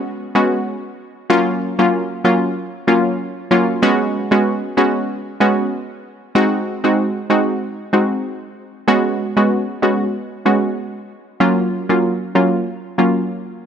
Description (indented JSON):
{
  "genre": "afrobeats",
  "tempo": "95 BPM",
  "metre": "4/4",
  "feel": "swing 55% on 16ths",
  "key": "F# major",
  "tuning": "A4 = 440 Hz",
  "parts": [
    { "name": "glassy wavetable pluck", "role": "solo", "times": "0.3-13.2 s", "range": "F#3 to F#4", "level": "-15 LUFS", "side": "equal", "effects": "chorus" }
  ],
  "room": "light reverb, digital ambience",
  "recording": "none",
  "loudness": "-15 LUFS",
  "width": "side -8 dB against mid",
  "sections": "0.0-11.4 A section; 11.4-13.7 B section",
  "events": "none",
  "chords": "0.0 C#7sus4; 1.3 F#maj7; 3.8 C#7sus4; 6.4 G#7; 8.9 C#7sus4; 11.4 F#maj7"
}